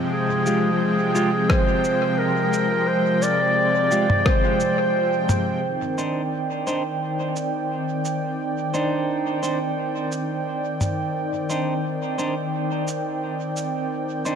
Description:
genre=ambient dub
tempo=87 BPM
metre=4/4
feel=swing 54% on 16ths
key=C minor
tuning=A4 = 439 Hz
part: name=warm analog pad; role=sustained chords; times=0.0-14.4 s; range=C3 to G5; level=-23 LUFS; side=equal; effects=chorus, tremolo
part: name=warm clarinet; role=melody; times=0.1-5.3 s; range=Ab4 to D5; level=-22 LUFS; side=equal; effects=dub echo
part: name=clean electric guitar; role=stabs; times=0.5-14.4 s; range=Ab3 to C5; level=-28 LUFS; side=right 1 dB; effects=low-pass filter, dub echo
part: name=lo-fi sampler-style drum kit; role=drums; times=0.5-14.4 s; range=rim click, shaker, toms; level=-28 LUFS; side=equal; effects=studio reverb, dub echo
part: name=electronic kick drum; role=drums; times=1.5-4.4 s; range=none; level=-21 LUFS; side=left 1 dB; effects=overdrive, studio reverb
room=wet echo chamber reverb, RT60 2.2 s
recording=none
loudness=-20 LUFS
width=side -7 dB against mid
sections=0.0-5.6 A section; 5.6-14.4 B section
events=none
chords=0.0 Fmadd9/C; 5.6 Cmadd9

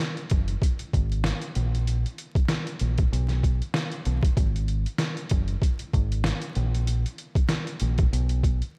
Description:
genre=hip hop, boom-bap hip-hop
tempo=96 BPM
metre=4/4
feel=swing 55% on 16ths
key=unclear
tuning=A4 = 440 Hz
part: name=trip hop sampler-style drum kit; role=drums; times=0.2-8.7 s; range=hi-hat, kick drum, snare drum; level=-28 LUFS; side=equal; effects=none
part: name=deep dub fingered electric bass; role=bass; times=0.3-8.6 s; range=F#1 to B1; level=-27 LUFS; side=equal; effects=none
room=light reverb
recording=vinyl crackle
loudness=-26 LUFS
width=mono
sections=0.0-8.8 A section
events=none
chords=none

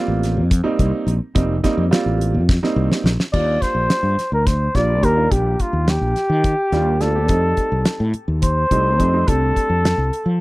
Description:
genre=electric jazz fusion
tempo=212 BPM (eighths)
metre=7/8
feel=straight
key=unclear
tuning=A4 = 440 Hz
part: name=clear concert grand piano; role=accompaniment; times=0.0-10.0 s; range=G3 to G4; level=-23 LUFS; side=right 3 dB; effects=none
part: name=fretless electric bass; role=bass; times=0.1-10.4 s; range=F1 to F3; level=-19 LUFS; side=equal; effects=none
part: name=damped 70s drum kit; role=drums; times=0.2-10.3 s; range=crash cymbal, hi-hat, kick drum, snare drum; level=-19 LUFS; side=equal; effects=none
part: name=trumpet with bucket mute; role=melody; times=3.3-10.4 s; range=F4 to D5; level=-20 LUFS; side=equal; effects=none
room=little or no reverb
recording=dry, close 1970s-style studio recording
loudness=-16 LUFS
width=side -20 dB against mid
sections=0.0-3.3 A section; 3.3-10.4 B section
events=drum fill 2.5-3.3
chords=0.0 F9sus4; 3.3 Ebmaj7; 7.3 F7

